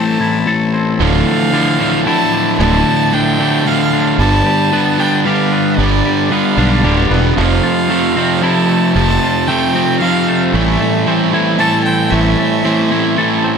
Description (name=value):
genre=post-rock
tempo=113 BPM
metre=3/4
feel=straight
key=D dorian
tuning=A4 = 441 Hz
part: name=warm violin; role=melody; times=0.0-13.4 s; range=D5 to A5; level=-19 LUFS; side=right 1 dB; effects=slapback echo
part: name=pedal steel guitar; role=sustained chords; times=0.0-13.6 s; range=E3 to B4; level=-25 LUFS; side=right 4 dB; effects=none
part: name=twelve-string electric guitar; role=arpeggios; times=0.0-13.6 s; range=D2 to A4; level=-19 LUFS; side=left 2 dB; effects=slapback echo
part: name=sludgy distorted guitar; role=riff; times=0.0-13.6 s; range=D2 to A3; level=-16 LUFS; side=left 8 dB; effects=overdrive
part: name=cranked stack guitar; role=riff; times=1.0-13.6 s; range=D2 to A3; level=-16 LUFS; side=right 15 dB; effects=overdrive
part: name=fuzz fingered electric bass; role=bass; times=1.0-12.3 s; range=D1 to B1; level=-15 LUFS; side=right 1 dB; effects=overdrive
room=light reverb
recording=none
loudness=-11 LUFS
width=side -6 dB against mid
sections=0.0-13.6 A section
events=none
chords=0.0 Am7; 1.0 Dmadd9; 4.2 G7; 7.4 Fmaj7; 10.5 Am7